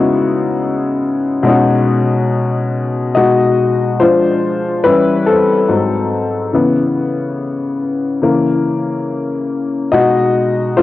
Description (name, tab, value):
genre	hip hop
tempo	71 BPM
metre	4/4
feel	swing 56% on 16ths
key	B major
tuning	A4 = 439 Hz
part	warm upright piano	solo	0.0-10.8 s	G#2 to D#5	-12 LUFS	left 2 dB	cassette tape, low-pass filter, analog delay
room	moderate lush hall reverb, RT60 2.5 s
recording	home recording on cassette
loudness	-12 LUFS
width	side -14 dB against mid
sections	0.0-3.2 A section; 3.2-10.8 A section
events	upright piano solo 3.2-10.8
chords	0.0 C#m11; 1.5 B69; 3.2 B6; 4.0 Fm6; 4.8 Em6; 5.7 G#7b9; 6.5 C#m7; 8.2 C#m6; 9.9 B6